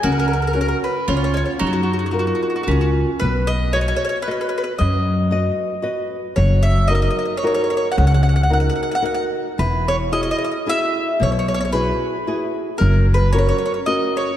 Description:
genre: italian folk, Italian serenade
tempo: 113 BPM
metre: 3/4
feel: swing 54% on 8ths, rubato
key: F# major, B major from 3.2 s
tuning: A4 = 441 Hz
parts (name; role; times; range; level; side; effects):
- mandolin; melody; 0.0-14.4 s; F#4 to F#5; -22 LUFS; equal; none
- bowl-back mandolin; second line; 0.0-3.2 s; C#4 to F#4; -26 LUFS; right 3 dB; none
- nylon-string guitar; accompaniment; 0.0-14.3 s; B2 to D#5; -22 LUFS; left 1 dB; none
- upright bass; bass; 0.0-13.5 s; E1 to F#2; -18 LUFS; equal; none
room: wet concert hall reverb, RT60 2.5 s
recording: dark, warm production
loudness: -16 LUFS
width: side -11 dB against mid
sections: 0.0-3.2 A section; 3.2-14.4 B section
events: none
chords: 0.0 F#/C#; 1.1 C#; 1.6 F#maj7; 3.2 B; 6.4 F#6; 9.6 Eadd9; 12.8 F#

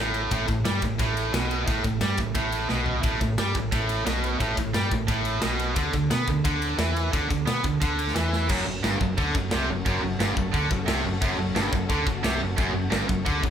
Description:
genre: heavy metal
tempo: 176 BPM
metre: 4/4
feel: straight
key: F# phrygian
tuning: A4 = 440 Hz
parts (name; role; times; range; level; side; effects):
- tight distorted guitar; riff; 0.0-13.5 s; F#2 to B3; -30 LUFS; left 8 dB; distortion
- tight distorted guitar; riff; 0.0-13.5 s; F#2 to B3; -27 LUFS; right 6 dB; distortion
- hollow-body short-scale fingered electric bass; bass; 0.0-13.5 s; F#1 to B2; -30 LUFS; left 1 dB; none
- tight metal drum kit; drums; 0.1-13.5 s; crash cymbal, kick drum, ride cymbal, snare drum, toms; -28 LUFS; equal; none
- rich studio string section; sustained chords; 8.5-13.5 s; F#3 to A4; -36 LUFS; left 1 dB; none
room: moderate large studio reverb, RT60 0.8 s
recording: band playing live in one room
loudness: -22 LUFS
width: side -9 dB against mid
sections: 0.0-8.5 A section; 8.5-13.5 B section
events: drum fill 2.7-3.0, 8.3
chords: 0.3 Gadd9/A; 5.8 Bmadd11/D; 8.5 F#m

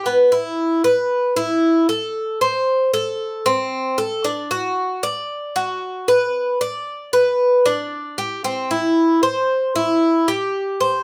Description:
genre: latin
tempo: 114 BPM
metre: 4/4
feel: straight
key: unclear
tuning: A4 = 440 Hz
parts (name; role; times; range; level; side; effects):
- Cuban tres; solo; 0.0-11.0 s; B3 to D5; -19 LUFS; equal; none
room: moderate studio reverb, RT60 0.6 s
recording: none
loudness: -19 LUFS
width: mono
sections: 0.0-11.0 A section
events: none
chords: none

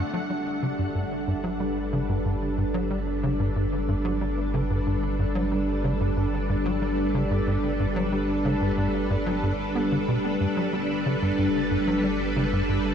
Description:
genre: ambient, sequencer-driven space music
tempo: 92 BPM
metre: 4/4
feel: straight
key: G major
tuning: A4 = 438 Hz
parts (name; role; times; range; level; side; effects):
- string machine, full ensemble; sustained chords; 0.0-12.9 s; G3 to F#5; -26 LUFS; equal; ensemble chorus, shimmer reverb
- tight sequencer bass; riff; 0.0-12.8 s; G2 to B3; -28 LUFS; equal; ensemble chorus, tape echo
- warm sub bass; bass; 0.0-12.9 s; G1; -32 LUFS; equal; none
room: moderate huge ambient reverb, RT60 7.3 s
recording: none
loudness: -23 LUFS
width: side -8 dB against mid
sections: 0.0-12.9 A section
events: none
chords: 0.0 G

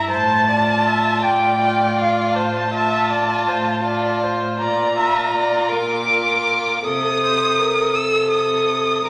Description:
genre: classical, slow romantic movement for string quartet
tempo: 54 BPM (dotted quarters)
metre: 12/8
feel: rubato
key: F major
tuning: A4 = 440 Hz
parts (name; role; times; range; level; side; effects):
- dark violin; melody; 0.0-9.1 s; F5 to E6; -21 LUFS; equal; none
- rich violin; second line; 0.0-9.1 s; F4 to Bb4; -27 LUFS; equal; none
- warm viola; accompaniment; 0.0-9.1 s; A4 to E5; -26 LUFS; equal; none
- warm cello; bass; 0.1-9.1 s; A2 to D3; -29 LUFS; equal; none
room: wet recital hall reverb, RT60 1.6 s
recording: none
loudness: -18 LUFS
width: mono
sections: 0.0-9.1 A section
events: none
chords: 0.1 F/A; 4.6 Bb; 6.8 Adim/C

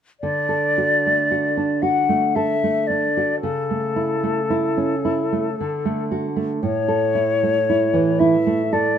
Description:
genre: romantic duo for flute and classical guitar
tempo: 56 BPM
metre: 3/4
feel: rubato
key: D major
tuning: A4 = 440 Hz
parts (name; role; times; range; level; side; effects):
- bright silver concert flute; melody; 0.2-9.0 s; A4 to F#5; -20 LUFS; left 4 dB; none
- nylon-string guitar; accompaniment; 0.2-9.0 s; A2 to A4; -21 LUFS; right 3 dB; none
room: light reverb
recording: minimal, uncompressed stereo recording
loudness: -18 LUFS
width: side -8 dB against mid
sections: 0.2-9.0 A section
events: none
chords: 0.2 D; 3.4 A/C#; 5.6 D; 6.6 A

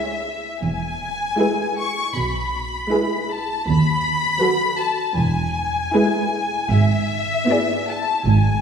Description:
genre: classical, slow romantic movement for string orchestra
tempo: 78 BPM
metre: 4/4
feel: rubato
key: unclear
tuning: A4 = 439 Hz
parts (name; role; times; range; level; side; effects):
- warm studio violin section; melody; 0.0-8.6 s; E5 to C#6; -22 LUFS; left 3 dB; none
- warm studio violin section; second line; 0.0-8.1 s; G#4 to D5; -26 LUFS; left 1 dB; none
- warm symphonic viola section; accompaniment; 0.0-8.1 s; F#3 to F#4; -23 LUFS; right 1 dB; none
- rich studio double bass section; bass; 0.6-8.6 s; E1 to D#2; -23 LUFS; right 2 dB; none
- warm studio cello section; bass; 0.6-8.6 s; D#2 to B2; -23 LUFS; right 2 dB; none
room: wet scoring stage reverb, RT60 2.0 s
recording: heard from further back in the room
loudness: -18 LUFS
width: side -7 dB against mid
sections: 0.0-8.6 A section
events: none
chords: 0.0 C#m; 0.6 E; 3.7 B7/D#; 5.2 E; 6.7 E7/G#

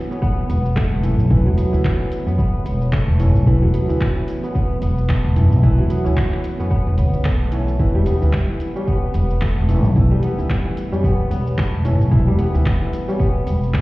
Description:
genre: organic downtempo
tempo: 111 BPM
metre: 4/4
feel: swing 57% on 16ths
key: E minor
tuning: A4 = 440 Hz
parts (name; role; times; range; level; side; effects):
- kora; arpeggios; 0.0-13.8 s; E3 to E4; -22 LUFS; equal; digital delay
- deep house drum kit; drums; 0.1-13.8 s; handclaps, hi-hat, shaker; -32 LUFS; equal; small room ambience
- tabla; percussion; 0.1-13.2 s; none; -28 LUFS; equal; none
- electronic kick drum; drums; 0.2-13.8 s; none; -20 LUFS; equal; small room ambience
- upright bass; bass; 0.5-13.8 s; E1 to D2; -17 LUFS; equal; sidechain pumping
room: light reverb, studio reverb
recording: heard muffled through a wall, stone room reverb, EQ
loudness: -16 LUFS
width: side -20 dB against mid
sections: 0.0-13.8 A section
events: none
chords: 0.0 Bm/E; 7.8 Em

